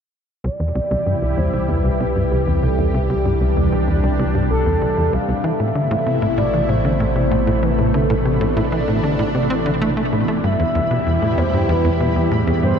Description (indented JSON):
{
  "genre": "ambient, sequencer-driven space music",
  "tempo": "96 BPM",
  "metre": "4/4",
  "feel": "straight",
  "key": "unclear",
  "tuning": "A4 = 442 Hz",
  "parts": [
    { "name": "expressive synth lead", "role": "melody", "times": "0.4-12.8 s", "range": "G4 to F5", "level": "-24 LUFS", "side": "equal", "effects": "chorus, tape echo" },
    { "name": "lush unison pad", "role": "sustained chords", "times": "0.8-12.8 s", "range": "B2 to G4", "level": "-21 LUFS", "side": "equal", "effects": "chorus, phaser" },
    { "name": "tight sequencer bass", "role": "riff", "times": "0.4-12.8 s", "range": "C2 to C4", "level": "-20 LUFS", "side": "equal", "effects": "cassette tape, tape echo" },
    { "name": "analog drone", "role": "bass", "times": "1.2-12.8 s", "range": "A1 to E2", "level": "-24 LUFS", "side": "equal", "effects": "chorus" },
    { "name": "pulsing gated texture", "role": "texture", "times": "0.9-12.8 s", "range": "B5", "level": "-36 LUFS", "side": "right 4 dB", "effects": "chorus, built-in reverb" }
  ],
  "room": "moderate huge ambient reverb, RT60 7.0 s",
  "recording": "dark, warm production",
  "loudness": "-16 LUFS",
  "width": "side -7 dB against mid",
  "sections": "0.4-12.8 A section",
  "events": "fade-in on synth texture 0.4-12.8",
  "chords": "0.4 C; 5.4 Amadd9; 10.4 Em"
}